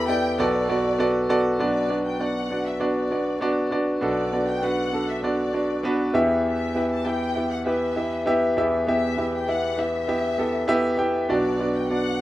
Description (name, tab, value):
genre	pop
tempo	99 BPM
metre	4/4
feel	straight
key	B minor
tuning	A4 = 440 Hz
part	rich studio violin section	melody	0.0-12.2 s	D5 to A5	-32 LUFS	left 3 dB	plate reverb
part	clear concert grand piano	accompaniment	0.0-12.2 s	B1 to G5	-21 LUFS	equal	plate reverb
room	moderate studio ambience, RT60 0.5 s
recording	rough home demo mix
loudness	-21 LUFS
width	side -15 dB against mid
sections	0.0-1.6 A section; 1.6-12.2 B section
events	none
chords	0.4 Bm7; 6.1 Em; 11.3 Bm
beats	0.39 1.00 | 1.60 2.21 2.81 3.42 | 4.02 4.63 5.24 5.84 | 6.45 7.05 7.66 8.27 | 8.87 9.48 10.08 10.69 | 11.29 11.90